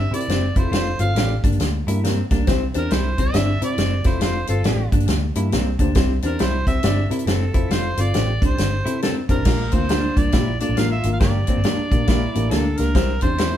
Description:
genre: uptempo 1960s-style soul.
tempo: 137 BPM.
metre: 4/4.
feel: swing 63% on 8ths.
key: C mixolydian.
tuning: A4 = 440 Hz.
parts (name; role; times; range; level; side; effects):
mellow harmonica; melody; 0.0-13.6 s; A4 to F5; -27 LUFS; right 2 dB; none.
electric guitar through a small old amp; riff; 0.0-13.6 s; Bb3 to G4; -28 LUFS; equal; tremolo.
vintage muted picked electric bass; bass; 0.0-13.6 s; F1 to C3; -22 LUFS; equal; none.
dark upright piano; accompaniment; 0.1-13.5 s; Bb3 to D5; -26 LUFS; left 3 dB; none.
natural country drum kit; drums; 0.1-13.5 s; crash cymbal, hi-hat, kick drum, snare drum; -21 LUFS; equal; none.
room: light reverb.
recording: band playing live in one room.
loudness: -17 LUFS.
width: side -11 dB against mid.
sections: 0.0-9.5 A section; 9.5-13.6 B section.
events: none.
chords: 0.0 C; 0.5 F; 1.4 Gm; 2.5 C; 4.0 F; 4.9 Gm; 6.0 C; 7.5 F; 8.4 C; 9.5 Bb; 11.2 Gm; 13.0 C.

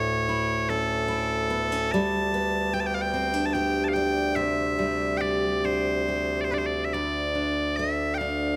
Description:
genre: celtic folk, Celtic slow air.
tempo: 48 BPM (dotted quarters).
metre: 6/8.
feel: rubato.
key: unclear.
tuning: A4 = 440 Hz.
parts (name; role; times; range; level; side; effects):
loud bright bagpipes; melody; 0.0-8.6 s; D2 to A5; -28 LUFS; equal; none.
picked steel-string acoustic guitar; accompaniment; 0.0-8.6 s; D2 to G4; -30 LUFS; equal; none.
room: moderate scoring stage reverb, RT60 1.8 s.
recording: close, detailed microphones.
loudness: -26 LUFS.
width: mono.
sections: 0.0-6.9 A section; 6.9-8.6 B section.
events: none.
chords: 0.0 A; 1.9 G; 4.3 Cadd9; 6.9 Dm.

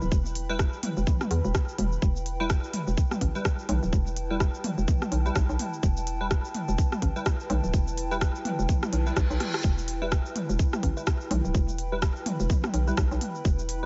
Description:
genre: minimal techno.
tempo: 126 BPM.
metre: 4/4.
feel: swing 58% on 16ths.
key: E minor.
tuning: A4 = 440 Hz.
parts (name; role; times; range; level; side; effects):
hollow knocking FM bass; bass; 0.0-13.9 s; D1 to E2; -30 LUFS; equal; sidechain pumping.
minimal click drum kit; drums; 0.0-13.8 s; hi-hat, rim click, shaker; -36 LUFS; equal; overdrive.
warbly tape-like pad; texture; 0.0-13.9 s; E4 to B5; -39 LUFS; equal; chorus, built-in reverb, sidechain pumping.
electronic kick drum; drums; 0.1-13.6 s; none; -28 LUFS; equal; none.
wavetable chord stab; stabs; 0.5-13.9 s; G3 to B4; -38 LUFS; equal; ensemble chorus, tape echo.
electronic toms; percussion; 0.8-13.3 s; none; -37 LUFS; equal; tape echo.
reverse cymbal; sound effects; 8.9-9.6 s; none; -41 LUFS; equal; none.
room: light reverb.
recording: nothing above 7.9 kHz.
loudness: -27 LUFS.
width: mono.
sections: 0.0-13.9 A section.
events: reverse cymbal 8.9-9.6; drum fill 9.4.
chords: 0.0 Em.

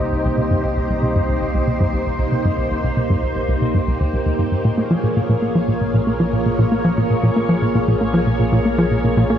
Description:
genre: ambient, sequencer-driven space music.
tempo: 116 BPM.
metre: 4/4.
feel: straight.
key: unclear.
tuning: A4 = 440 Hz.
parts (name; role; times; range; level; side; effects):
string machine, full ensemble; sustained chords; 0.0-9.4 s; Bb3 to Db5; -20 LUFS; equal; ensemble chorus.
tight sequencer bass; riff; 0.0-9.4 s; C2 to Bb3; -18 LUFS; equal; analog delay.
analog drone; bass; 0.0-9.4 s; Bb1 to C2; -29 LUFS; equal; chorus.
room: wet concert hall reverb, RT60 2.1 s.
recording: dark, warm production.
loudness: -16 LUFS.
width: side -10 dB against mid.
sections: 0.0-9.4 A section.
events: filter sweep on analog synth bass 0.0-9.4.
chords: 0.0 Cm7; 4.6 Bbm7.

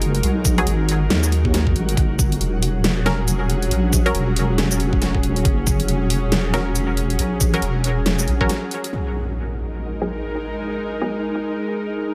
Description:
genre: deep dubstep.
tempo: 138 BPM.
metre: 4/4.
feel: swing 60% on 16ths, half-time.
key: unclear.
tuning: A4 = 441 Hz.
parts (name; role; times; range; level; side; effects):
bowed-like drone; sustained chords; 0.0-12.1 s; F#3 to A#4; -28 LUFS; equal; built-in reverb.
deep soft wobble bass; bass; 0.0-8.5 s; E1 to D#2; -22 LUFS; equal; chorus, tube saturation.
dubstep drum kit; drums; 0.0-8.9 s; hi-hat, shaker, snare drum; -26 LUFS; equal; overdrive.
flickering grainy texture; texture; 0.0-12.1 s; F#3 to F#4; -34 LUFS; equal; built-in reverb.
electronic kick drum; drums; 0.5-8.5 s; none; -22 LUFS; equal; overdrive.
filtered dub chord stab; stabs; 0.6-11.1 s; F#3 to A#4; -29 LUFS; equal; chorus, dub echo.
impact; sound effects; 8.9-10.7 s; none; -31 LUFS; equal; none.
room: light reverb, digital ambience.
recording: none.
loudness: -20 LUFS.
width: mono.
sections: 0.0-8.9 A section; 8.9-12.1 B section.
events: break 8.5-8.9; impact 8.9-10.7; filter sweep on synth stab 8.9-12.1.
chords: 0.0 G#m7; 2.0 F#; 8.9 G#5.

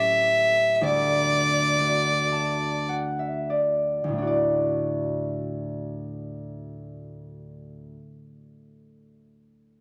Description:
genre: celtic folk, Celtic slow air.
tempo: 45-69 BPM.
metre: 3/4.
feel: rubato.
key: D major.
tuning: A4 = 441 Hz.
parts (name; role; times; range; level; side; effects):
rich fiddle; melody; 0.0-2.9 s; D5 to E5; -24 LUFS; equal; none.
concert harp; accompaniment; 0.0-8.0 s; D2 to A5; -29 LUFS; equal; none.
room: light reverb.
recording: dry, close 1970s-style studio recording.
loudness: -24 LUFS.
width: mono.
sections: 0.0-4.1 A section; 4.1-8.1 B section.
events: slowing down 0.0-4.1; harp fill 1.8-4.1.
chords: 0.0 A7; 0.8 D.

